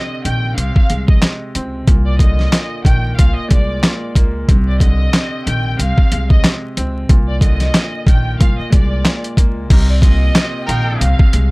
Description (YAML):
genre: hip hop, boom-bap hip-hop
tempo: 92 BPM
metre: 4/4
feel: swing 58% on 16ths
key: C minor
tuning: A4 = 440 Hz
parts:
  - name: warm studio violin section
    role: melody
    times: 0.0-11.5 s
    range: D5 to G5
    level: -24 LUFS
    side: equal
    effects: high-pass filter, low-pass filter
  - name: warm upright piano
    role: accompaniment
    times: 0.0-11.5 s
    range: Bb2 to C4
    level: -25 LUFS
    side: equal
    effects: high-pass filter, low-pass filter
  - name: upright bass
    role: bass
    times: 0.2-11.5 s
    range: Bb1 to Db2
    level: -17 LUFS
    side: equal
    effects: none
  - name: boom bap sampler-style drum kit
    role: drums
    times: 0.3-11.5 s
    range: crash cymbal, handclaps, hi-hat, kick drum, snare drum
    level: -12 LUFS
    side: equal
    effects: none
  - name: warm horn section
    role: stabs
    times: 9.7-11.1 s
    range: Eb4 to Bb4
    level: -26 LUFS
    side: equal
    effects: high-pass filter, low-pass filter, analog delay
room: little or no reverb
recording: dry, gritty hardware recording, vinyl crackle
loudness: -12 LUFS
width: side -25 dB against mid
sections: 0.0-9.7 A section; 9.7-11.5 B section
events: none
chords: 0.0 Cm9; 0.6 Dbmaj7/C; 1.9 Eb5/C; 3.2 Bb9/C; 4.5 Cm9; 5.8 Dbmaj7/C; 7.1 Eb5/C; 8.4 Bb9/C; 9.7 Cm7; 11.0 Fm7/C